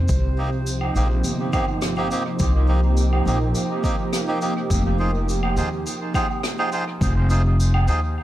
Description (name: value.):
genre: ambient dub.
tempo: 104 BPM.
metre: 4/4.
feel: straight.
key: unclear.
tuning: A4 = 440 Hz.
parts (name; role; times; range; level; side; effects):
warm analog pad; sustained chords; 0.0-8.2 s; C3 to G4; -26 LUFS; right 2 dB; chorus.
upright bass; bass; 0.0-8.2 s; F1 to Eb2; -20 LUFS; equal; none.
drifting glass-harmonics texture; texture; 0.0-8.2 s; C5; -39 LUFS; right 6 dB; chorus, built-in reverb.
electronic kick drum; drums; 0.1-7.1 s; none; -24 LUFS; equal; overdrive.
shaker, woodblock and rim click; drums; 0.1-8.0 s; none; -30 LUFS; right 2 dB; dub echo.
melodica; stabs; 0.4-8.0 s; Bb3 to C5; -27 LUFS; right 1 dB; vintage 12-bit sampler grit, dub echo.
room: light reverb.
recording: none.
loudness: -19 LUFS.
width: side -14 dB against mid.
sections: 0.0-8.2 A section.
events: none.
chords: 0.1 Cm7; 4.7 Fm7.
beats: | 0.09 0.67 1.24 1.82 | 2.40 2.98 3.55 4.13 | 4.71 5.28 5.86 6.44 | 7.01 7.59 8.17.